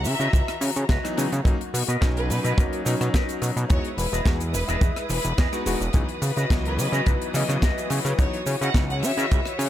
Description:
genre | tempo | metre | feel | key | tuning
nu-disco, nu disco | 107 BPM | 4/4 | straight | C# dorian | A4 = 438 Hz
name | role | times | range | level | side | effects
rich studio violin section | melody | 0.0-9.5 s | B4 to F#5 | -33 LUFS | equal | tape echo
rich studio string section | sustained chords | 0.0-9.7 s | E3 to D#6 | -33 LUFS | left 2 dB | vintage 12-bit sampler grit, sidechain pumping
electric guitar with an envelope filter | riff | 0.0-9.5 s | E4 to D#5 | -32 LUFS | left 1 dB | wide subtle chorus, ping-pong delay
fat analog bass | bass | 0.0-9.7 s | E1 to C#3 | -25 LUFS | equal | none
tight funk drum kit | drums | 0.0-9.7 s | cabasa, hi-hat, rim click, snare drum | -31 LUFS | left 2 dB | studio reverb
kick drum | drums | 0.3-9.4 s | none | -21 LUFS | equal | studio reverb
bright electric grand piano | accompaniment | 1.0-8.9 s | E3 to D#5 | -30 LUFS | left 2 dB | sidechain pumping, ping-pong delay
room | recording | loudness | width
small room ambience | none | -21 LUFS | side -12 dB against mid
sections
0.0-9.7 A section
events
none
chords
0.0 C#m11; 1.5 Bmaj7; 3.7 Emaj7; 5.9 C#m11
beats
0.34 0.90 | 1.46 2.02 2.58 3.14 | 3.70 4.26 4.82 5.38 | 5.94 6.50 7.07 7.62 | 8.19 8.75 9.31

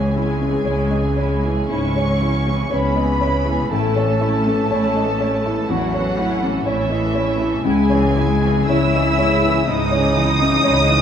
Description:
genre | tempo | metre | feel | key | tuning
cinematic, emotional film score for orchestra | 60 BPM | 4/4 | rubato | unclear | A4 = 440 Hz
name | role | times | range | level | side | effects
muted studio violin section | melody | 0.0-11.0 s | E5 to E6 | -24 LUFS | equal | none
muted studio violin section | second line | 0.0-11.0 s | A3 to A4 | -28 LUFS | right 1 dB | none
warm clarinet | second line | 0.0-11.0 s | E4 to E5 | -27 LUFS | left 1 dB | none
felt-muted upright piano | accompaniment | 0.0-11.0 s | A1 to D#5 | -22 LUFS | equal | none
muted studio viola section | accompaniment | 0.0-11.0 s | E3 to C#4 | -26 LUFS | right 1 dB | none
concert harp | arpeggios | 0.0-11.0 s | A2 to C#5 | -26 LUFS | left 5 dB | none
muted studio cello section | bass | 0.0-11.0 s | E3 to E4 | -24 LUFS | equal | none
muted studio double bass section | bass | 0.0-11.0 s | A1 to C#2 | -22 LUFS | right 1 dB | none
room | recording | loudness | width
wet stone room reverb, RT60 1.4 s | none | -16 LUFS | side -8 dB against mid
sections
0.0-11.0 A section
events
none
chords
0.0 C#m; 3.7 A; 7.7 C#m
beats
0.65 1.71 2.72 | 3.72 4.71 5.71 6.67 | 7.66 8.70 9.68 10.66

